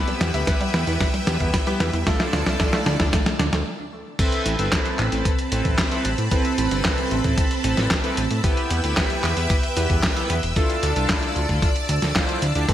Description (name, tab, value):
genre	italo disco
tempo	113 BPM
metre	4/4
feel	straight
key	A minor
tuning	A4 = 441 Hz
part	string machine, full ensemble	sustained chords	0.0-12.7 s	C4 to E6	-27 LUFS	right 2 dB	ensemble chorus, shimmer reverb
part	analog pluck	arpeggios	0.0-3.6, 12.7 s	G3 to E5	-30 LUFS	right 1 dB	chorus, tape echo, shimmer reverb
part	chorused polysynth	stabs	0.0-12.7 s	B3 to C5	-27 LUFS	left 1 dB	tape echo, shimmer reverb
part	dusty soul sampler-style drum kit	drums	0.1-12.7 s	crash cymbal, handclaps, hi-hat, snare drum	-25 LUFS	equal	gated reverb
part	fat analog bass	bass	0.2-12.7 s	E1 to A2	-25 LUFS	equal	none
part	electronic kick drum	drums	0.5-12.7 s	none	-23 LUFS	equal	none
room	light reverb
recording	vinyl crackle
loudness	-19 LUFS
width	side -11 dB against mid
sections	0.0-4.2 A section; 4.2-12.7 B section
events	drum fill 0.0-3.7; filter sweep on synth arpeggio sound 0.0-4.2; stop 3.7-4.2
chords	0.0 Em; 2.1 Dmadd9; 4.2 Amadd9; 8.4 Em; 10.6 Dmadd9